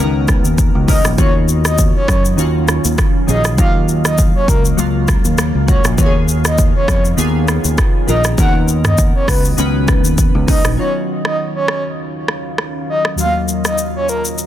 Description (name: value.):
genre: afrobeats.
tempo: 100 BPM.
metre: 4/4.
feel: swing 55% on 16ths.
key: Eb minor.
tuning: A4 = 440 Hz.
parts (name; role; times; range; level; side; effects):
glassy digital keys; accompaniment; 0.0-14.5 s; Eb2 to B4; -21 LUFS; left 1 dB; chorus, phaser.
deep dark ambient pad; sustained chords; 0.0-14.5 s; Eb2 to F5; -25 LUFS; right 1 dB; chorus, built-in reverb.
fingered electric bass; bass; 0.0-10.8 s; A#1 to Gb2; -17 LUFS; equal; none.
afro-pop drum kit; drums; 0.3-14.5 s; hi-hat, kick drum, rim click, shaker, toms; -15 LUFS; equal; soft clipping on snare.
breathy flute-like synth lead; melody; 0.9-14.2 s; Bb4 to F#5; -20 LUFS; equal; chorus, digital delay.
room: little or no reverb.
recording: dense, heavily limited modern master.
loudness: -12 LUFS.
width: side -12 dB against mid.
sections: 0.0-10.8 A section; 10.8-14.5 B section.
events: none.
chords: 0.0 Bmaj7; 1.2 Ebm9; 3.6 Gbmaj7; 6.0 Db9/Eb; 8.4 Bmaj7; 10.8 Ebm9; 13.2 Gbmaj7/Eb.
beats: 0.58 | 1.18 1.78 2.38 2.98 | 3.58 4.18 4.78 5.38 | 5.98 6.58 7.18 7.78 | 8.38 8.98 9.58 10.18 | 10.78 11.38 11.98 12.58 | 13.18 13.78 14.38.